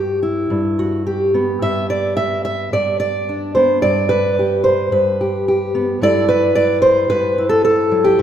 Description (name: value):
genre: folk, solo fingerstyle acoustic guitar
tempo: 110 BPM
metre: 4/4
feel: straight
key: G major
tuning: A4 = 441 Hz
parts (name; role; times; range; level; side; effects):
- fingerpicked steel-string acoustic guitar; solo; 0.0-8.2 s; G2 to E5; -14 LUFS; equal; none
room: moderate scoring stage reverb, RT60 1.8 s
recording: recorded in a church or concert hall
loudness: -14 LUFS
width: side -9 dB against mid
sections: 0.0-8.2 A section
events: none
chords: 0.0 Emadd9/G; 1.6 G; 6.0 Dadd9/G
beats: 0.52 1.07 | 1.63 2.18 2.74 3.29 | 3.84 4.39 4.93 5.48 | 6.02 6.56 7.10 7.64 | 8.19